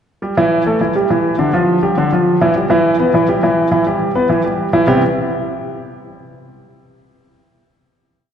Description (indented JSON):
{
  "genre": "jazz",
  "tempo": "207 BPM",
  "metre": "4/4",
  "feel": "straight",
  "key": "C major",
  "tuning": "A4 = 445 Hz",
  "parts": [
    { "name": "warm concert grand piano", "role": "solo", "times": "0.2-5.0 s", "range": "C3 to B4", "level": "-13 LUFS", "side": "equal", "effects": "none" }
  ],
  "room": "wet church reverb, RT60 2.9 s",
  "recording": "recorded in a church or concert hall, nothing above 11.0 kHz",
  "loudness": "-12 LUFS",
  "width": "side -8 dB against mid",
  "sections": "0.2-4.9 A section; 4.9-6.0 final chord",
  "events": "none",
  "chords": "0.2 Emadd11; 0.8 Em; 1.4 Dm; 2.0 Dmadd9; 2.6 Em; 4.9 Cmaj7"
}